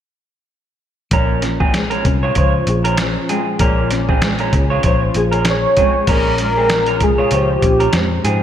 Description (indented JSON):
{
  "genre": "indie pop, bedroom pop",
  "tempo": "97 BPM",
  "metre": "4/4",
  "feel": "swing 55% on 16ths",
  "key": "Bb dorian",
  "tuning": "A4 = 437 Hz",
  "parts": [
    { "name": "electric guitar through a small old amp", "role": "second line", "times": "1.1-8.4 s", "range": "C4 to Db5", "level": "-20 LUFS", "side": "right 1 dB", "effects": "wide subtle chorus, slapback echo" },
    { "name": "nylon-string guitar", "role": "accompaniment", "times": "1.1-8.4 s", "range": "Bb2 to Ab4", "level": "-21 LUFS", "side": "left 2 dB", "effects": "ensemble chorus, warbly pitch drift, low-pass filter" },
    { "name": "vintage muted picked electric bass", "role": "bass", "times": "1.1-8.4 s", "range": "Bb1 to Ab2", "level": "-20 LUFS", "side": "equal", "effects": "none" },
    { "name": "lo-fi sampler-style drum kit", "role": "drums", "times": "1.1-8.4 s", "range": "crash cymbal, hi-hat, kick drum, snare drum", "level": "-18 LUFS", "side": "equal", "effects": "none" },
    { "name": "warm velvety synth lead", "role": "melody", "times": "5.5-8.3 s", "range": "G4 to Db5", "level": "-16 LUFS", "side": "right 1 dB", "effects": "lush chorus, slapback echo" }
  ],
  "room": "moderate scoring stage reverb, RT60 2.1 s",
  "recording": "big arena sound",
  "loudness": "-13 LUFS",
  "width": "side -10 dB against mid",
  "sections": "1.1-6.1 A section; 6.1-8.4 B section",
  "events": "filter sweep on nylon-string guitar 1.1-6.1",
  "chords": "1.1 Bbm7",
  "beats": "| 1.12 1.74 2.36 2.98 | 3.60 4.22 4.84 5.46 | 6.08 6.70 7.32 7.94"
}